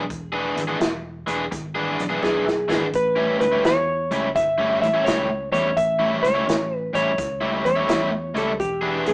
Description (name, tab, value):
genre	electric blues shuffle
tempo	85 BPM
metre	4/4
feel	swing 66% on 8ths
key	unclear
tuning	A4 = 439 Hz
part	clean lap steel guitar	melody	0.0-9.1 s	G4 to E5	-21 LUFS	equal	none
part	overdriven semi-hollow guitar	riff	0.0-9.1 s	A2 to G#4	-24 LUFS	equal	none
part	vintage muted fingered electric bass	bass	0.0-9.1 s	E1 to E2	-32 LUFS	equal	none
part	natural country drum kit	drums	0.1-9.1 s	hi-hat, kick drum, snare drum	-26 LUFS	equal	none
room	moderate studio reverb, RT60 0.5 s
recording	band playing live in one room, small speaker sound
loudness	-19 LUFS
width	side -33 dB against mid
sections	0.0-9.1 A section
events	drum fill 2.2-2.9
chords	0.0 E7; 2.9 A7; 8.6 E7